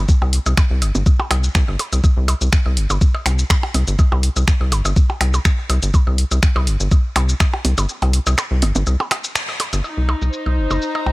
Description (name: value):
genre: minimal techno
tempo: 123 BPM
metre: 4/4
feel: swing 54% on 16ths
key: C minor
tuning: A4 = 440 Hz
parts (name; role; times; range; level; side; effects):
- rubbery square bass; bass; 0.0-11.1 s; G1 to C2; -17 LUFS; equal; sidechain pumping
- electronic kick drum; drums; 0.1-7.5 s; none; -14 LUFS; equal; overdrive
- punchy analog drum machine; drums; 0.1-10.9 s; finger snaps, hi-hat, shaker; -23 LUFS; equal; low-pass filter on hats, low-pass filter on perc, low-pass filter on snare
- percussion blips; percussion; 0.2-11.1 s; none; -25 LUFS; right 1 dB; dub echo
- rich chamber string section; texture; 9.8-11.1 s; Eb4 to Bb5; -23 LUFS; left 2 dB; sidechain pumping
room: little or no reverb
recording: none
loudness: -15 LUFS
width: side -22 dB against mid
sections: 0.0-9.8 A section; 9.8-11.1 B section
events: drop 0.0-9.8; break 7.9-9.8; band accent 9.4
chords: 0.0 C5